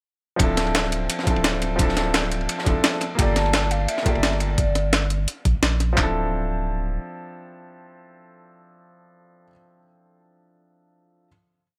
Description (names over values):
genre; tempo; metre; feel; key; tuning
liquid drum and bass; 172 BPM; 4/4; swing 54% on 16ths; D minor; A4 = 440 Hz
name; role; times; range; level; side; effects
warm grand piano; accompaniment; 0.4-11.3 s; F3 to D5; -29 LUFS; equal; digital delay
warm sub bass; bass; 0.4-7.0 s; D1 to Bb1; -27 LUFS; equal; none
breakbeat sampler-style drum kit; drums; 0.4-6.1 s; handclaps, kick drum; -24 LUFS; equal; none
breakbeat sampler-style drum kit; drums; 0.4-5.9 s; hi-hat, snare drum; -26 LUFS; equal; none
crunchy breakbeat drum kit; drums; 0.4-4.5 s; ride cymbal, snare drum; -32 LUFS; equal; high-pass filter on cymbals, high-pass filter on snare, high-pass filter on room
hollow clarinet-like synth lead; melody; 3.4-5.6 s; D5 to A5; -31 LUFS; equal; chorus, digital delay
bongos; percussion; 4.1 s; none; -34 LUFS; equal; none
room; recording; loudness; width
light reverb, studio reverb; none; -22 LUFS; mono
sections
0.4-6.0 drop; 6.0-8.8 final chord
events
drop 0.4-6.0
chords
0.4 Dm9; 3.0 Gm9; 6.0 Dm9